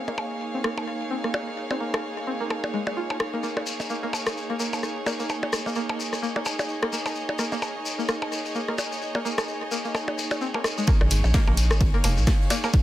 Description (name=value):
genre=minimal techno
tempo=129 BPM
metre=4/4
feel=swing 57% on 16ths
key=Bb minor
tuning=A4 = 440 Hz
part: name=warm chamber string section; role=texture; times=0.0-12.8 s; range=Bb3 to F5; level=-31 LUFS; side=right 1 dB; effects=sidechain pumping
part: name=string-like resonator pluck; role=riff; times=0.1-12.7 s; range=Ab3 to F4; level=-32 LUFS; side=equal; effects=chorus, sidechain pumping, digital delay
part: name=electronic percussion blips and rim click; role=percussion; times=0.1-12.7 s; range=none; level=-29 LUFS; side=left 1 dB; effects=digital delay
part: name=shekere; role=percussion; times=3.4-12.8 s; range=none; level=-34 LUFS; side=left 4 dB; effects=none
part: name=electronic kick drum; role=drums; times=10.9-12.8 s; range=none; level=-20 LUFS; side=equal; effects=overdrive
part: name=swinging big-band drum kit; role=drums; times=10.9-12.8 s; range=ride cymbal, snare drum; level=-39 LUFS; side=left 4 dB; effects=high-pass filter on cymbals, high-pass filter on snare, high-pass filter on room
part: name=rubbery square bass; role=bass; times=11.0-12.3 s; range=F1 to Bb1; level=-21 LUFS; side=equal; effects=sidechain pumping
part: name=punchy analog drum machine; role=drums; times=11.1-12.6 s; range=hi-hat, snare drum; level=-29 LUFS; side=right 1 dB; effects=overdrive
room=light reverb, small room ambience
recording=none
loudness=-23 LUFS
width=side -14 dB against mid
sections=0.0-10.9 A section; 10.9-12.8 B section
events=filter sweep on synth pluck 0.0-10.9; drop 10.9-12.8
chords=0.0 Bbm7